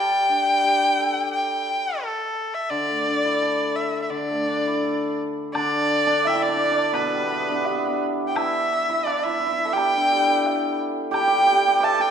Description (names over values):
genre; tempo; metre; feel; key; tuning
chinese traditional, Chinese chamber ensemble; 86 BPM; 4/4; straight; D zhi mode; A4 = 441 Hz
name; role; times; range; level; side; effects
rich erhu; melody; 0.0-12.1 s; A4 to A5; -22 LUFS; equal; none
hammered dulcimer; accompaniment; 0.0-12.1 s; B2 to D5; -27 LUFS; left 2 dB; none
woodblock; percussion; 5.5-12.0 s; none; -34 LUFS; left 1 dB; none
hammered dulcimer; second line; 5.6-12.1 s; B3 to B4; -24 LUFS; right 4 dB; none
room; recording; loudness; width
moderate scoring stage reverb, RT60 1.7 s; minimal, uncompressed stereo recording; -20 LUFS; side -7 dB against mid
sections
0.0-5.5 A section; 5.5-12.1 B section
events
none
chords
none